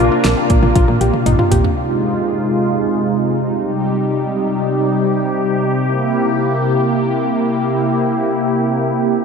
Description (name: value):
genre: synth-pop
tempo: free time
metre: none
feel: none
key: C minor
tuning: A4 = 438 Hz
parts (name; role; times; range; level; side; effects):
- clear concert grand piano; accompaniment; 0.0-1.7 s; Bb3 to Bb4; -25 LUFS; right 1 dB; ensemble chorus
- brassy analog pad; sustained chords; 0.0-9.2 s; C3 to G4; -15 LUFS; equal; chorus
- soft round pluck; arpeggios; 0.0-1.7 s; Eb4 to G4; -24 LUFS; left 3 dB; chorus, analog delay
- solid FM bass; bass; 0.0-1.6 s; Bb1 to Bb2; -16 LUFS; equal; none
- deep house drum kit; drums; 0.2-1.8 s; hi-hat, kick drum, snare drum, toms; -19 LUFS; right 1 dB; none
room: wet cathedral reverb, RT60 6.2 s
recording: dreamy mix soaked in reverb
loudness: -14 LUFS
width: side -6 dB against mid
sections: 0.0-1.8 A section; 1.8-9.2 B section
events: drum fill 0.8-1.8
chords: 0.0 Bbadd9; 1.8 Fm7; 3.6 Cm; 5.8 C7